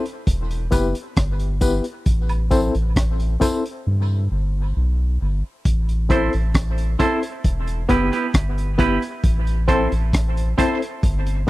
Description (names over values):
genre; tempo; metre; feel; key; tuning
dub reggae; 67 BPM; 4/4; straight; A dorian; A4 = 441 Hz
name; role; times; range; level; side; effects
barky reed electric piano; stabs; 0.0-11.5 s; B3 to C5; -24 LUFS; left 3 dB; overdrive, fast tremolo, dub echo
crunchy breakbeat drum kit; drums; 0.1-11.5 s; hi-hat, kick drum, rim click; -20 LUFS; equal; none
soft dub sub bass; bass; 0.3-11.5 s; E1 to G2; -20 LUFS; equal; none
tambourine and woodblock; percussion; 0.7-3.6 s; none; -36 LUFS; right 3 dB; dub echo
semi-hollow electric guitar; accompaniment; 6.1-10.8 s; B3 to C5; -24 LUFS; right 5 dB; spring reverb, dub echo
room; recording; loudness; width
small room ambience; dry, close 1970s-style studio recording, lossy compression artefacts; -18 LUFS; side -18 dB against mid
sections
0.0-11.5 A section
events
break 0.0-5.7; drums muted 3.9-5.7; part muted 5.7-11.5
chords
0.3 Em; 2.1 Am; 3.9 G; 5.7 Am; 7.4 Em; 9.2 Am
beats
0.27 1.17 | 2.06 2.96 3.86 4.75 | 5.65 6.55 7.44 8.34 | 9.24 10.13 11.03